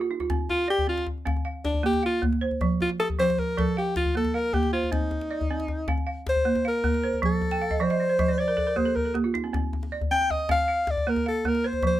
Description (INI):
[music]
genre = west african traditional, West African string and xylophone music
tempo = 104 BPM (dotted quarters)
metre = 12/8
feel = straight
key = unclear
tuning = A4 = 442 Hz
[part]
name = balafon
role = arpeggios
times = 0.0-12.0 s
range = F3 to G5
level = -27 LUFS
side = right 4 dB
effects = none
[part]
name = djembe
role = percussion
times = 0.2-11.9 s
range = none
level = -30 LUFS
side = left 2 dB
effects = none
[part]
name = warm alto saxophone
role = melody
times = 0.5-12.0 s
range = D4 to G5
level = -25 LUFS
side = left 1 dB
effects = none
[sound]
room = light reverb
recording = none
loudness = -23 LUFS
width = side -14 dB against mid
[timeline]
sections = 0.3-12.0 A section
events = balafon fill 0.0, 7.5-9.5; alto saxophone solo 0.3-12.0; drum fill 8.6-9.5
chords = 0.3 Csus24; 1.5 Bb5; 2.6 F5; 3.8 Bb5; 4.9 Cm; 6.1 Bb5; 7.2 F; 8.4 N.C.; 9.5 Csus2; 10.7 Bb5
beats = | 0.29 0.87 1.45 2.03 | 2.61 3.19 3.77 4.34 | 4.92 5.50 6.07 6.65 | 7.23 7.80 8.38 8.96 | 9.53 10.11 10.68 11.26 | 11.84